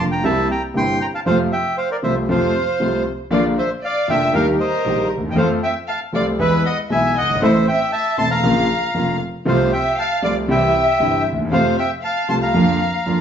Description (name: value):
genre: tango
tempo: 117 BPM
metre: 4/4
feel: rubato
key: F major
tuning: A4 = 440 Hz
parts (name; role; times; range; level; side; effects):
- bandoneon; melody; 0.0-13.2 s; Bb4 to C6; -21 LUFS; right 1 dB; none
- warm concert grand piano; accompaniment; 0.0-13.2 s; E1 to A4; -19 LUFS; equal; none
- muted studio string section; stabs; 0.0-13.2 s; C3 to G4; -27 LUFS; right 1 dB; none
- rich chamber violin section; second line; 2.3-13.2 s; Bb4 to A5; -23 LUFS; left 1 dB; none
room: wet large studio reverb, RT60 1.0 s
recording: band playing live in one room, nothing above 7.7 kHz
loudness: -16 LUFS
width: side -8 dB against mid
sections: 0.0-13.2 A section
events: none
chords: 0.2 C7; 1.3 F; 3.3 Bb; 4.3 Eb; 5.4 F; 6.4 E; 7.4 Am; 8.4 Bbm; 9.5 F/C; 10.5 C; 11.5 F; 12.5 Bb/F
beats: 0.24 0.75 | 1.26 1.78 2.29 2.81 | 3.32 3.84 4.35 4.86 | 5.38 5.89 6.40 6.91 | 7.42 7.93 8.44 8.95 | 9.46 9.98 10.49 11.01 | 11.52 12.03 12.55 13.06